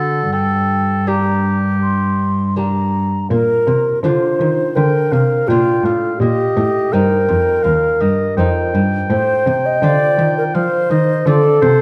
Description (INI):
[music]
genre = classical, baroque-style sonata movement with continuo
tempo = 83 BPM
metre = 4/4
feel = straight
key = G minor, Bb major from 3.3 s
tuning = A4 = 439 Hz
[part]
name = baroque flute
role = melody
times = 0.0-11.8 s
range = F4 to C6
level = -19 LUFS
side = equal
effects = none
[part]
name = clear oboe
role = second line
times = 0.0-11.8 s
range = G4 to G5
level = -24 LUFS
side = equal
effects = none
[part]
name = lute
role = accompaniment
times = 0.0-11.8 s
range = Eb2 to G4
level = -24 LUFS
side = equal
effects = none
[part]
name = rich cello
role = bass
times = 0.0-11.8 s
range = Eb2 to F3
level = -20 LUFS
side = equal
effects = none
[sound]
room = wet recital hall reverb, RT60 1.4 s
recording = dark, warm production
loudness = -16 LUFS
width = mono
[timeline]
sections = 0.0-3.3 A section; 3.3-11.8 A section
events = none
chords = 0.3 Gm; 3.3 Bb; 6.2 Cm7; 9.1 F/A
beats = | 0.33 1.08 1.82 2.57 | 3.31 4.04 4.76 5.48 | 6.21 6.93 7.65 8.38 | 9.10 9.83 10.54 11.26